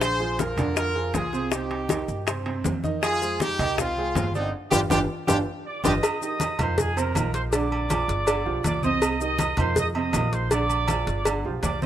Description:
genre	latin, salsa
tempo	160 BPM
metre	4/4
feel	straight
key	C minor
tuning	A4 = 440 Hz
part	bright horn section	melody	0.0-5.9 s	C4 to C5	-26 LUFS	equal	none
part	clear baby grand piano	accompaniment	0.0-11.9 s	C3 to Eb5	-30 LUFS	right 5 dB	none
part	upright bass	bass	0.0-11.9 s	G1 to G2	-30 LUFS	equal	none
part	bongos and cowbell	percussion	0.0-11.8 s	none	-28 LUFS	left 3 dB	none
part	congas	percussion	0.0-11.9 s	none	-30 LUFS	left 2 dB	none
part	maracas	percussion	0.0-11.9 s	none	-35 LUFS	left 11 dB	none
part	timbales and agogo bells	percussion	0.0-11.8 s	none	-32 LUFS	right 3 dB	none
part	bright trumpet section	melody	5.7-11.9 s	Ab4 to Eb6	-28 LUFS	right 2 dB	none
room	light reverb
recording	rough home demo mix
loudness	-22 LUFS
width	side -11 dB against mid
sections	0.0-6.0 A section; 6.0-11.9 B section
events	band accent 4.5-6.0; drum fill 5.1-6.0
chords	0.0 Bb7; 1.5 Cm; 3.0 Fm7; 4.5 G5; 6.0 Cm; 6.8 Fm7; 7.5 Bb7; 8.3 G7; 9.0 Cm; 9.8 F5; 10.5 Bb7; 11.3 G7

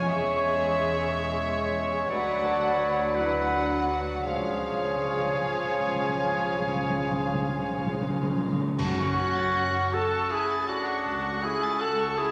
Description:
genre	classical, slow romantic movement for symphony orchestra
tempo	52-60 BPM (dotted quarters)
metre	12/8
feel	rubato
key	F# minor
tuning	A4 = 441 Hz
part	warm studio violin section	melody	0.0-12.3 s	E5 to A6	-37 LUFS	equal	none
part	bright concert flute	second line	0.0-12.3 s	F#5 to C#6	-38 LUFS	equal	none
part	clear clarinet	second line	0.0-12.3 s	F#4 to D5	-33 LUFS	equal	none
part	warm symphonic violin section	second line	0.0-12.3 s	G#4 to A5	-39 LUFS	equal	none
part	dark symphonic viola section	accompaniment	0.0-12.3 s	D4 to A4	-39 LUFS	equal	none
part	warm French horn section	sustained chords	0.0-12.3 s	E#3 to D4	-39 LUFS	equal	none
part	warm trumpet	stabs	0.0-12.3 s	C#4 to C#5	-35 LUFS	equal	none
part	dark symphonic double bass section	bass	0.0-12.0 s	E1 to D2	-42 LUFS	equal	none
part	warm studio cello section	bass	0.0-12.0 s	C#2 to F#2	-41 LUFS	equal	none
part	warm bassoon	accompaniment	0.1-8.4 s	E#3 to G#3	-37 LUFS	equal	none
part	timpani	percussion	4.3-9.9 s	F#2 to C#3	-33 LUFS	equal	none
part	clash cymbals and concert bass drum	percussion	8.8-10.3 s	none	-44 LUFS	equal	none
room	wet concert hall reverb, RT60 2.3 s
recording	none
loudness	-27 LUFS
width	mono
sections	0.0-8.8 A section; 8.8-12.3 B section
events	timpani fill 4.3-8.8; band accent 8.8-9.6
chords	0.1 C#m/E; 2.1 Bm/D; 4.3 C#; 8.8 F#m

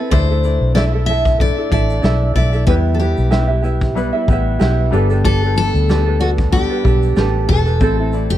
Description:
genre	acoustic pop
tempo	94 BPM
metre	4/4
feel	swing 55% on 16ths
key	unclear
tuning	A4 = 435 Hz
part	picked steel-string acoustic guitar	melody	0.0-8.4 s	F#4 to E5	-21 LUFS	left 1 dB	none
part	ukulele	accompaniment	0.0-8.4 s	C4 to E5	-21 LUFS	right 6 dB	none
part	felt-muted upright piano	accompaniment	0.1-8.4 s	G3 to A5	-24 LUFS	left 4 dB	none
part	vintage muted fingered electric bass	bass	0.1-8.4 s	E1 to E2	-16 LUFS	left 1 dB	none
part	loose indie drum kit	drums	0.1-8.4 s	kick drum, shaker, snare drum	-18 LUFS	left 1 dB	none
room	light reverb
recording	dark, warm production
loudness	-13 LUFS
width	side -12 dB against mid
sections	0.0-8.4 A section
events	felt piano fill 4.0-5.2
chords	0.1 Dsus2; 2.7 Em; 4.9 Gadd9; 7.8 Am

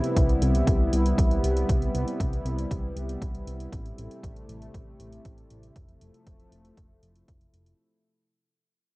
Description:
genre	synthwave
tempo	118 BPM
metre	4/4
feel	straight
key	unclear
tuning	A4 = 440 Hz
part	warm analog pad	sustained chords	0.0-7.8 s	C3 to E4	-30 LUFS	equal	chorus, sidechain pumping, cassette tape
part	electronic hi-hat	drums	0.0-7.8 s	none	-43 LUFS	equal	cassette tape
part	fat analog bass	bass	0.2-7.7 s	F1 to C2	-27 LUFS	equal	none
part	electronic kick drum	drums	0.2-7.4 s	none	-26 LUFS	equal	cassette tape
room	light reverb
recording	home recording on cassette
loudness	-23 LUFS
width	side -21 dB against mid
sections	0.0-7.8 A section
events	fade-out 0.0-7.8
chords	0.0 Cmaj7; 3.7 Am7; 5.8 Fmaj7

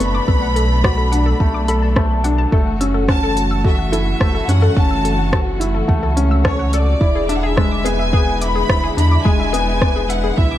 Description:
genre	piano and strings electronica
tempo	107 BPM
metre	4/4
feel	straight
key	unclear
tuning	A4 = 440 Hz
part	clear studio violin section	melody	0.0-10.6 s	C#5 to B5	-23 LUFS	left 1 dB	none
part	muted studio string section	sustained chords	0.0-10.6 s	B2 to F#4	-25 LUFS	equal	none
part	felt-muted upright piano	riff	0.0-10.6 s	G#3 to A4	-22 LUFS	left 2 dB	none
part	warm sub bass	bass	0.0-10.6 s	E1 to F#2	-19 LUFS	right 1 dB	sidechain pumping
part	deep house drum kit	drums	0.0-10.2 s	hi-hat, rim click	-23 LUFS	equal	none
part	analog pluck	arpeggios	0.1-10.6 s	G#4 to E6	-26 LUFS	left 5 dB	chorus, sidechain pumping, tape echo
part	electronic kick drum	drums	0.3-10.5 s	none	-17 LUFS	right 1 dB	none
room	light reverb, small room ambience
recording	dark, warm production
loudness	-14 LUFS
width	side -12 dB against mid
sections	0.0-10.6 A section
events	none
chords	0.0 Bm7; 2.5 F#m7; 7.0 E7

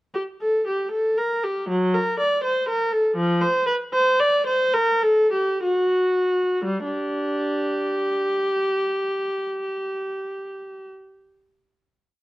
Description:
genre	classical, baroque-style suite movement for unaccompanied viola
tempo	56-82 BPM (dotted quarters)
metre	6/8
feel	rubato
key	G minor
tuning	A4 = 435 Hz
part	warm viola	solo	0.1-10.9 s	F3 to D5	-20 LUFS	equal	none
room	light reverb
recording	worn, warbling old tape, cassette tape, warbly pitch drift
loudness	-20 LUFS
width	side -18 dB against mid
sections	0.1-6.6 A section; 6.6-10.6 final chord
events	slowing down 2.4-6.6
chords	none

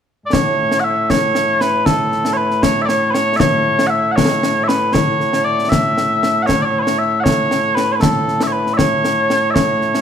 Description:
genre	scottish traditional, Scottish pipe music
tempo	78 BPM (dotted quarters)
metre	6/8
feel	straight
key	A major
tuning	A4 = 439 Hz
part	mellow small bagpipes	melody	0.3-10.0 s	A2 to F#5	-15 LUFS	equal	none
part	concert snare drum and concert bass drum	drums	0.3-10.0 s	none	-18 LUFS	left 1 dB	none
room	wet stone room reverb, RT60 1.3 s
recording	band playing live in one room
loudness	-13 LUFS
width	side -8 dB against mid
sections	0.3-10.0 A section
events	none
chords	none

